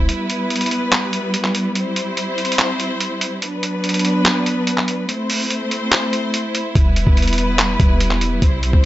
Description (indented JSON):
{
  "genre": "hip hop, trap",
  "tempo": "144 BPM",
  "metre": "4/4",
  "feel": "half-time",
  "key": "unclear",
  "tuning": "A4 = 441 Hz",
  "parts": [
    { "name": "rich symphonic string section", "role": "sustained chords", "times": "0.0-8.9 s", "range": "F#3 to C5", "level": "-20 LUFS", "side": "equal", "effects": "none" },
    { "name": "clean 808-style bass", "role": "bass", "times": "0.0-0.1, 6.8-8.9 s", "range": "E1 to C2", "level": "-19 LUFS", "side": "equal", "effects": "none" },
    { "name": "lo-fi sampler-style drum kit", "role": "drums", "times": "0.1-8.8 s", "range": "handclaps, hi-hat, kick drum", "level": "-17 LUFS", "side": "equal", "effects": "none" }
  ],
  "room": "digital ambience",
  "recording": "dry, gritty hardware recording, transformer saturation, nothing above 7.8 kHz",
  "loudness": "-16 LUFS",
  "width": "side -15 dB against mid",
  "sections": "0.0-8.9 A section",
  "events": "break 0.1-6.8",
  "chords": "0.1 Em; 1.8 C; 3.4 Bm; 5.1 Am; 6.8 Em",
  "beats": "| 0.09 0.50 0.92 1.34 | 1.75 2.17 2.59 3.00 | 3.42 3.84 4.25 4.67 | 5.09 5.50 5.92 6.34 | 6.75 7.17 7.59 8.00 | 8.42 8.84"
}